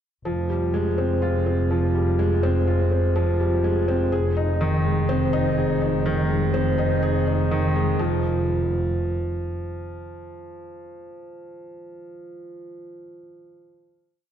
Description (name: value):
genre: piano and strings electronica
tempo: 124 BPM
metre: 4/4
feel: straight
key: F minor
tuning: A4 = 438 Hz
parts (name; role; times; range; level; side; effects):
- felt-muted upright piano; riff; 0.3-14.3 s; Eb3 to Ab4; -24 LUFS; left 1 dB; tape echo
- rich studio double bass section; bass; 0.3-9.4 s; F1; -24 LUFS; right 1 dB; none
room: wet concert hall reverb, RT60 2.2 s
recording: none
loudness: -20 LUFS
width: side -9 dB against mid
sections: 0.3-8.0 build; 8.0-11.9 final note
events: build-up 0.3-8.0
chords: 0.3 Fmadd9; 4.1 Ab/F; 8.0 N.C.